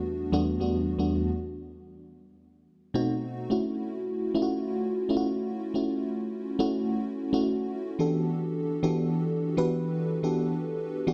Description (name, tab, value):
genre	R&B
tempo	107 BPM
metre	4/4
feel	swing 65% on 16ths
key	unclear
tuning	A4 = 438 Hz
part	FM electric piano with soft pad layer	solo	0.0-11.1 s	E2 to B4	-29 LUFS	equal	chorus, tremolo
room	moderate plate reverb, RT60 3.5 s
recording	none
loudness	-29 LUFS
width	mono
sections	0.0-3.5 A section; 3.5-11.1 B section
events	none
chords	0.0 Em11; 1.3 B7b9; 3.5 F#m7; 8.0 Em11